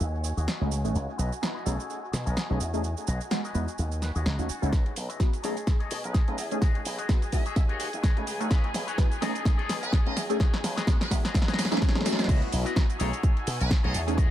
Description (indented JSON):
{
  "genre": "filtered disco house",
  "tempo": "127 BPM",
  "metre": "4/4",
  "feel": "swing 56% on 16ths",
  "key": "unclear",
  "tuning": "A4 = 439 Hz",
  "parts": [
    { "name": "muted trumpet section", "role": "melody", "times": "0.0-14.0 s", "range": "F#4 to E5", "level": "-40 LUFS", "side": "right 1 dB", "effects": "sidechain pumping, low-pass filter, dub echo" },
    { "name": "muted chamber violin section", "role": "sustained chords", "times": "0.0-14.3 s", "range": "F#4 to G#5", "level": "-38 LUFS", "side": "equal", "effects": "sidechain pumping, low-pass filter" },
    { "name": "slap bass with an envelope filter", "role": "bass", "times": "0.0-14.3 s", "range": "A1 to B2", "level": "-30 LUFS", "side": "equal", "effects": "sidechain pumping, high-pass filter, low-pass filter" },
    { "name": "house drum kit", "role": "drums", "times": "0.0-14.3 s", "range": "crash cymbal, hi-hat, shaker, snare drum", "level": "-32 LUFS", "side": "equal", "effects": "sidechain pumping on perc, small room ambience, sidechain pumping on hats, sidechain pumping on cymbals" },
    { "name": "electric guitar with an envelope filter", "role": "riff", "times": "0.2-14.3 s", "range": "D#4 to G#5", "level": "-38 LUFS", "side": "left 6 dB", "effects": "sidechain pumping, low-pass filter, dub echo" },
    { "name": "funky polysynth comp", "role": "accompaniment", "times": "0.6-14.1 s", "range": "G#3 to D#5", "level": "-33 LUFS", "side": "equal", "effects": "chorus, phaser, sidechain pumping, low-pass filter, dub echo" },
    { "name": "electronic kick drum", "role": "drums", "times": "4.7-14.3 s", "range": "none", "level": "-24 LUFS", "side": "equal", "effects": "small room ambience" }
  ],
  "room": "light reverb, digital ambience",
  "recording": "echo-heavy mix",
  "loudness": "-24 LUFS",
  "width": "side -12 dB against mid",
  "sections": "0.0-4.7 A section; 4.7-12.3 B section; 12.3-14.3 C section",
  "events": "filter sweep 0.0-4.7, 4.7-12.3; clean electric guitar fill 4.0-4.7; build-up 4.7-12.3; drum fill 4.7-12.3; drop 12.3-14.3",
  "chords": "0.0 D#m7b5; 1.0 C#m11; 1.7 B13; 2.8 Emaj9; 3.8 D#m7b5; 4.7 C#m11; 5.4 B13; 6.6 Emaj9; 7.6 D#m7b5; 8.5 C#m11; 9.2 B13; 10.4 Emaj9; 11.3 D#m7b5; 12.3 C#m11; 13.0 B13"
}